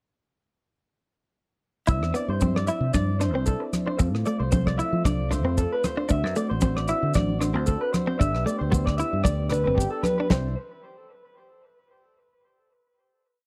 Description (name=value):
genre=highlife guitar band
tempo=114 BPM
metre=4/4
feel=swing 54% on 16ths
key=C major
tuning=A4 = 438 Hz
part: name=direct-recorded clean electric guitar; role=accompaniment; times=1.9-10.5 s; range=A3 to E4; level=-31 LUFS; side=equal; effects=analog chorus
part: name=tonewheel organ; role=sustained chords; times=1.9-10.6 s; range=A3 to G4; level=-38 LUFS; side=equal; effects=slow rotary speaker, overdrive
part: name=electric guitar through a small old amp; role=arpeggios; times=1.9-10.5 s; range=G4 to E5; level=-32 LUFS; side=equal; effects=tape echo
part: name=fingered electric bass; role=bass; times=1.9-10.5 s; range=G1 to F3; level=-29 LUFS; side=equal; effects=none
part: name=damped 70s drum kit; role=drums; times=1.9-10.4 s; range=hi-hat, kick drum, rim click, snare drum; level=-27 LUFS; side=equal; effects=none
part: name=congas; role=percussion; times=1.9-10.5 s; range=none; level=-31 LUFS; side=equal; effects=none
part: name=maracas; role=percussion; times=1.9-10.6 s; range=none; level=-42 LUFS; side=equal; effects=none
room=studio ambience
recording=dry, close 1970s-style studio recording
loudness=-25 LUFS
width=mono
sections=1.9-10.3 groove; 10.3-12.4 final chord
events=none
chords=1.9 Cadd9; 4.0 F; 6.1 D7; 8.2 G; 10.3 N.C.